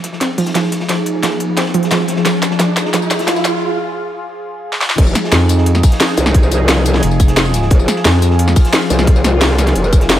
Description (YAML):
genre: dark technical drum and bass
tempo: 176 BPM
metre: 4/4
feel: straight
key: F minor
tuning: A4 = 441 Hz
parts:
  - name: sweeping resonant pad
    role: sustained chords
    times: 0.0-10.2 s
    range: F3 to Ab4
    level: -19 LUFS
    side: left 1 dB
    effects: chorus, sidechain pumping
  - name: crunchy breakbeat drum kit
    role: drums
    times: 0.0-10.2 s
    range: hi-hat, ride cymbal, snare drum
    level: -27 LUFS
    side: equal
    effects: high-pass filter on cymbals, high-pass filter on hats, high-pass filter on snare, high-pass filter on room
  - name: drum and bass drum kit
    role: drums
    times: 0.0-10.2 s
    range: crash cymbal, hi-hat, snare drum, tambourine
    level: -16 LUFS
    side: equal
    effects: high-pass filter on hats, high-pass filter on perc, high-pass filter on snare, high-pass filter on cymbals
  - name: riser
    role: sound effects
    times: 0.7-3.6 s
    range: none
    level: -23 LUFS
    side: right 3 dB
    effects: none
  - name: warbly dusty pluck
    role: arpeggios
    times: 0.2-3.4 s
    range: F3 to C4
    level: -19 LUFS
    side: right 2 dB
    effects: chorus, sidechain pumping, ping-pong delay
  - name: growl bass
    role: bass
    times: 5.0-10.2 s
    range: F1 to C2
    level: -14 LUFS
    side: equal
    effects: chorus, sidechain pumping
  - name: electronic kick drum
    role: drums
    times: 5.0-10.0 s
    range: none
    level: -10 LUFS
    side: equal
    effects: none
  - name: growling FM bass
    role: bass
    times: 5.3-8.5 s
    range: F1 to F2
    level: -12 LUFS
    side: equal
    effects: none
room: light reverb, digital ambience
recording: high-pass filter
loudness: -11 LUFS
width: side -12 dB against mid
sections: 0.0-5.0 A section; 5.0-10.2 B section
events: build-up 0.0-5.0; drum fill 0.0-3.6, 4.7; filter sweep on analog synth pad 0.0-5.0; filter sweep 0.0-5.0; riser 0.7-3.6; break 3.6-5.0; drop 5.0-10.2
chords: 0.0 Fm7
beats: 0.21 0.55 | 0.89 1.23 1.57 1.91 | 2.25 2.60 2.94 3.28 | 3.62 3.96 4.30 4.64 | 4.98 5.32 5.66 6.00 | 6.35 6.69 7.03 7.37 | 7.71 8.05 8.39 8.73 | 9.07 9.41 9.76 10.10